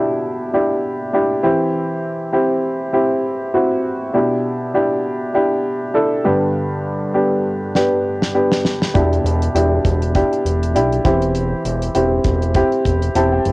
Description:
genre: piano-driven pop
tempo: 100 BPM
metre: 4/4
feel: swing 56% on 16ths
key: E minor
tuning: A4 = 440 Hz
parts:
  - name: warm upright piano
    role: accompaniment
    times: 0.0-13.5 s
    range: G2 to A5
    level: -16 LUFS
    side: equal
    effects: cassette tape
  - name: damped 70s drum kit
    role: drums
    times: 7.8-13.5 s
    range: hi-hat, kick drum, snare drum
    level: -20 LUFS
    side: equal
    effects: cassette tape
  - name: fat analog bass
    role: bass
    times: 9.0-13.5 s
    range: E1 to B1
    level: -18 LUFS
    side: equal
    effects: none
room: light reverb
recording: home recording on cassette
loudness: -15 LUFS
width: side -23 dB against mid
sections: 0.0-13.5 A section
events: drum fill 7.7-8.9; upright piano fill 12.9-13.5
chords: 0.0 Em7; 1.4 C/E; 4.1 Em7; 6.2 G; 8.9 Em7; 11.0 C/E

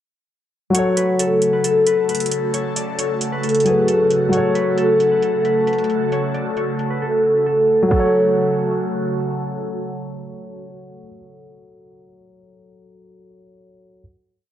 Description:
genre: hip hop, trap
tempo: 134 BPM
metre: 4/4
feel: half-time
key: F# minor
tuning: A4 = 440 Hz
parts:
  - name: concert harp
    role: melody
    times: 0.7-10.1 s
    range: G#4 to D5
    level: -18 LUFS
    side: equal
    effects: low-pass filter, digital delay
  - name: dark concert grand piano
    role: accompaniment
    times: 0.7-14.0 s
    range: F#3 to C#5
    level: -22 LUFS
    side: left 1 dB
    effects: low-pass filter
  - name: airy breathy pad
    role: sustained chords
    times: 0.7-11.1 s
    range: C#3 to A4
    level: -24 LUFS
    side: right 1 dB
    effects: chorus, phaser
  - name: trap drum kit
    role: drums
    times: 0.7-8.0 s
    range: crash cymbal, hi-hat, kick drum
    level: -25 LUFS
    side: right 2 dB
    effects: overdrive, vintage 12-bit sampler grit
room: light reverb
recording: low-pass filter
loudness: -16 LUFS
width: side -11 dB against mid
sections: 0.7-7.9 breakdown; 7.9-11.5 final chord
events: filter sweep 0.7-7.9; drums muted 7.0-7.9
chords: 0.7 F#m

